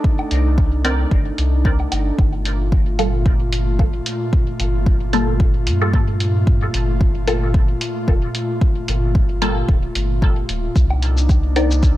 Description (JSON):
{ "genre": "dub techno", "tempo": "112 BPM", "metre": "4/4", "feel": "swing 55% on 16ths", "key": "G minor", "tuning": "A4 = 440 Hz", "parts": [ { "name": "airy breathy pad", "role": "sustained chords", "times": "0.0-12.0 s", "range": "Bb2 to F4", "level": "-24 LUFS", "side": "equal", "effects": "chorus, sidechain pumping" }, { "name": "electronic kick drum", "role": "drums", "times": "0.0-11.9 s", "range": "none", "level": "-16 LUFS", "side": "equal", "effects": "overdrive" }, { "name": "wind-like tuned noise texture", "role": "texture", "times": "0.0-2.2, 11.0-12.0 s", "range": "A4 to C5", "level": "-38 LUFS", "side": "right 3 dB", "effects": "built-in reverb, sidechain pumping" }, { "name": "woodblock", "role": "percussion", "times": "0.2-2.0, 10.9-11.7 s", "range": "none", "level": "-32 LUFS", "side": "equal", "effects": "sidechain pumping on perc, sidechain pumping on toms, dub echo" }, { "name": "soft dub sub bass", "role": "bass", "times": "0.3-12.0 s", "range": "D1 to G2", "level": "-19 LUFS", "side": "equal", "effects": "sidechain pumping" }, { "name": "electronic hi-hat and shaker", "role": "drums", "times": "0.3-11.9 s", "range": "none", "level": "-27 LUFS", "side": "equal", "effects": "none" }, { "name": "filtered dub chord stab", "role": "stabs", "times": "0.8-11.7 s", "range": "G3 to D5", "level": "-23 LUFS", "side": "left 1 dB", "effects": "phaser, cassette tape, sidechain pumping, dub echo" } ], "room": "digital ambience", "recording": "none", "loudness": "-15 LUFS", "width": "side -15 dB against mid", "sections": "0.0-2.2 A section; 2.2-12.0 A section", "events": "none", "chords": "0.0 Cm9; 2.2 Gm9; 10.8 Cm9" }